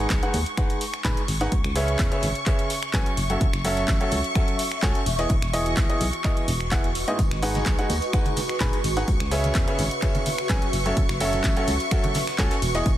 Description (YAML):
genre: piano house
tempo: 127 BPM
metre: 4/4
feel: straight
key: F# dorian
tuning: A4 = 440 Hz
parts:
  - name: string machine, violins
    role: sustained chords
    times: 0.0-13.0 s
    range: C#6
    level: -32 LUFS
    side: equal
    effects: ensemble chorus, sidechain pumping
  - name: bright upright piano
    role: riff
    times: 0.0-12.9 s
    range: G#2 to B5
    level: -27 LUFS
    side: equal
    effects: sidechain pumping, digital delay
  - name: solid FM bass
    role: bass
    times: 0.0-13.0 s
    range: D#1 to E2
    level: -27 LUFS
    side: equal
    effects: sidechain pumping
  - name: electronic kick drum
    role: drums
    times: 0.1-13.0 s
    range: none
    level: -24 LUFS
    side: equal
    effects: none
  - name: punchy analog drum machine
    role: drums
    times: 0.1-13.0 s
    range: finger snaps, handclaps, hi-hat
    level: -31 LUFS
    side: equal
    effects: soft clipping on snare
  - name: vintage brush drum kit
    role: drums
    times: 0.1-13.0 s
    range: hi-hat, snare drum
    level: -42 LUFS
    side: left 3 dB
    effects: none
  - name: ethereal airy pad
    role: texture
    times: 2.8-13.0 s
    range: F#4 to E5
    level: -33 LUFS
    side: right 1 dB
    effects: ensemble chorus, built-in reverb, phaser, sidechain pumping
  - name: tambourine and congas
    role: percussion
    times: 7.2-13.0 s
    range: none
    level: -35 LUFS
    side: right 2 dB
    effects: none
room: light reverb, studio reverb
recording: dense, heavily limited modern master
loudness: -21 LUFS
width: side -13 dB against mid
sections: 0.0-13.0 A section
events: none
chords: 0.0 G#m7; 1.5 C#m7; 3.2 F#m7; 5.1 Emaj7; 7.2 G#m7; 9.1 C#m7; 10.7 F#m7